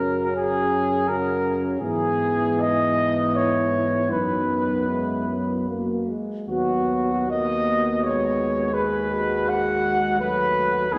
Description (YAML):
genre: classical, hymn-like piece for brass band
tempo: 70-87 BPM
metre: 3/4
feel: rubato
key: B major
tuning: A4 = 440 Hz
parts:
  - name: mellow trumpet section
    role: melody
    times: 0.0-11.0 s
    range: F#4 to F#5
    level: -25 LUFS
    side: equal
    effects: none
  - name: dark French horn section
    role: second line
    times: 0.0-11.0 s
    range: D#4 to G#4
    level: -32 LUFS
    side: equal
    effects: none
  - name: mellow trombone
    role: accompaniment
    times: 0.0-11.0 s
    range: C#3 to B3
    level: -33 LUFS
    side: equal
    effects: none
  - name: warm euphonium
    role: accompaniment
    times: 0.0-11.0 s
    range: G#3 to C#4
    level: -30 LUFS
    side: equal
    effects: none
  - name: mellow tuba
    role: bass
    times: 0.0-11.0 s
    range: D#2 to G#2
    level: -35 LUFS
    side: equal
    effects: none
room: wet concert hall reverb, RT60 2.2 s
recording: none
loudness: -23 LUFS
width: mono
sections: 0.0-11.0 A section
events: none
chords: 0.0 F#; 1.8 E/G#; 4.1 B/F#; 5.7 F#; 6.5 B/D#; 8.7 B7/D#